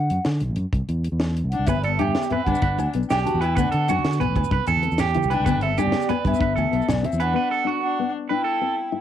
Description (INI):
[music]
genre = highlife guitar band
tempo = 127 BPM (dotted quarters)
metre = 12/8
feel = straight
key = G major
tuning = A4 = 442 Hz
[part]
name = mellow hollow concert flute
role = melody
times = 0.0-9.0 s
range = D5 to A5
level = -26 LUFS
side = equal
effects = cassette tape
[part]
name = fingered electric bass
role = bass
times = 0.0-7.3 s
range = G1 to D3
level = -24 LUFS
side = equal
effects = none
[part]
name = tight funk drum kit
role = drums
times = 0.1-7.3 s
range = hi-hat, kick drum, snare drum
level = -26 LUFS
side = equal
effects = cassette tape
[part]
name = warm viola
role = second line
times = 1.5-9.0 s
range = B3 to F#4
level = -30 LUFS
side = left 10 dB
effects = cassette tape
[part]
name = nylon-string guitar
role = accompaniment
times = 1.7-9.0 s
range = B3 to E4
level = -29 LUFS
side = left 11 dB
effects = cassette tape
[part]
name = electric guitar at the edge of break-up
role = arpeggios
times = 1.7-8.7 s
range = F#4 to B4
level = -26 LUFS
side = right 10 dB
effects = cassette tape
[part]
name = agogo bells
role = percussion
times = 1.7-7.4 s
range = none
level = -36 LUFS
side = left 11 dB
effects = none
[part]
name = congas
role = percussion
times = 1.7-7.1 s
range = none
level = -30 LUFS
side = right 6 dB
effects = none
[part]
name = maracas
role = percussion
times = 1.7-7.2 s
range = none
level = -45 LUFS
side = left 15 dB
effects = none
[sound]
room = light reverb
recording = home recording on cassette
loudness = -20 LUFS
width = side -10 dB against mid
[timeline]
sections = 0.0-9.0 A section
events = break 7.4-9.0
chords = 0.0 D6; 0.7 C; 1.7 G; 3.6 D6; 4.5 Cmaj7; 5.5 G; 7.4 D6; 8.3 Cmaj7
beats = 0.26 0.74 1.21 | 1.68 2.16 2.63 3.10 | 3.58 4.05 4.52 5.00 | 5.47 5.94 6.41 6.89 | 7.36 7.83 8.30 8.77